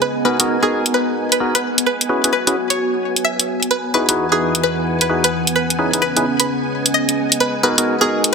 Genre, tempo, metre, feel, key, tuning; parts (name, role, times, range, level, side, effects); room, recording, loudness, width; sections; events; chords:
UK garage, two-step garage; 130 BPM; 4/4; swing 64% on 16ths; A4 = 440 Hz
string-like resonator pluck; melody; 0.0-8.2 s; G#4 to E5; -20 LUFS; equal; chorus, phaser, ping-pong delay
soft string machine; sustained chords; 0.0-8.3 s; B3 to G#5; -24 LUFS; equal; phaser, ensemble chorus
deep dark ambient pad; texture; 0.0-8.3 s; E3 to G#5; -24 LUFS; right 1 dB; chorus, built-in reverb
percussive organ stab; stabs; 0.2-8.3 s; B3 to B4; -20 LUFS; equal; chorus, digital delay
electronic hi-hat; drums; 0.4-8.3 s; -15 LUFS; equal
wet plate reverb, RT60 1.6 s; dense, heavily limited modern master; -15 LUFS; side -5 dB against mid
0.0-8.3 A section
0.0 G#m7; 1.6 F#9sus4; 3.7 Emaj9; 7.4 G#m7